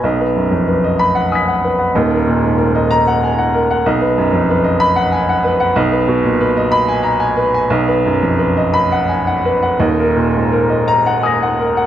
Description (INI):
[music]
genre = neoclassical minimalist piano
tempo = 56-64 BPM (dotted quarters)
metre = 6/8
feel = rubato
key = unclear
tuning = A4 = 441 Hz
[part]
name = warm upright piano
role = solo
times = 0.0-11.9 s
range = Eb1 to B6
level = -12 LUFS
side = equal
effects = none
[sound]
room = moderate recital hall reverb, RT60 1.6 s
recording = none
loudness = -12 LUFS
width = side -11 dB against mid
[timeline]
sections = 0.0-11.9 A section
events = none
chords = 0.0 B; 1.9 Ebm; 3.9 B; 5.8 Abm/Cb; 7.7 B; 9.8 Ebm